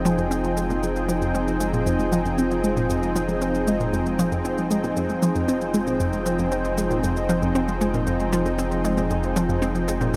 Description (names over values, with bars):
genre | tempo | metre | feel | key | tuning
ambient, sequencer-driven space music | 116 BPM | 4/4 | straight | F minor | A4 = 439 Hz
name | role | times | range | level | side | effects
lush unison pad | sustained chords | 0.0-10.2 s | F3 to G5 | -26 LUFS | equal | chorus
round analog bass | bass | 0.0-10.2 s | F1 | -33 LUFS | equal | none
wind-like tuned noise texture | texture | 2.2-10.2 s | C5 | -41 LUFS | equal | none
analog pluck | riff | 0.1-10.2 s | F2 to C4 | -27 LUFS | equal | chorus, analog delay
congas and shaker | percussion | 0.1-10.2 s | none | -38 LUFS | equal | analog delay
room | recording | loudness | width
wet huge ambient reverb, RT60 7.8 s | none | -23 LUFS | mono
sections
0.0-10.2 A section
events
filter sweep on synth arpeggio sound 0.0-10.2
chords
0.0 Fm7